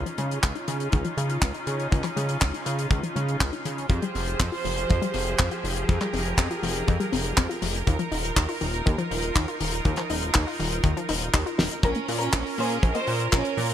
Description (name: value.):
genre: italo disco.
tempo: 121 BPM.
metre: 4/4.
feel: straight.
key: F minor.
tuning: A4 = 440 Hz.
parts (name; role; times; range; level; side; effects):
clear symphonic string section; sustained chords; 0.0-13.7 s; F3 to C5; -30 LUFS; right 2 dB; none.
chorused synth bass; bass; 0.0-13.7 s; Eb1 to Db3; -29 LUFS; equal; tube saturation.
wide unison pluck; arpeggios; 0.1-13.6 s; Eb3 to Bb4; -32 LUFS; left 4 dB; ping-pong delay.
damped 70s drum kit; drums; 0.1-13.7 s; handclaps, hi-hat, snare drum; -29 LUFS; left 1 dB; high-pass filter on hats, studio ambience, high-pass filter on cymbals, high-pass filter on snare, high-pass filter on room.
kick drum; drums; 0.4-13.4 s; none; -23 LUFS; equal; studio ambience.
bright chamber violin section; melody; 11.8-13.6 s; Db4 to Eb5; -28 LUFS; right 2 dB; none.
room: light reverb, small room ambience.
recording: none.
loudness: -23 LUFS.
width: side -10 dB against mid.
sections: 0.0-11.8 A section; 11.8-13.7 B section.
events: filter sweep on synth arpeggio sound 0.0-11.8; drum fill 11.6.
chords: 0.0 Dbadd9; 3.9 Fmadd9; 7.9 Ebsus2; 11.8 Bbm.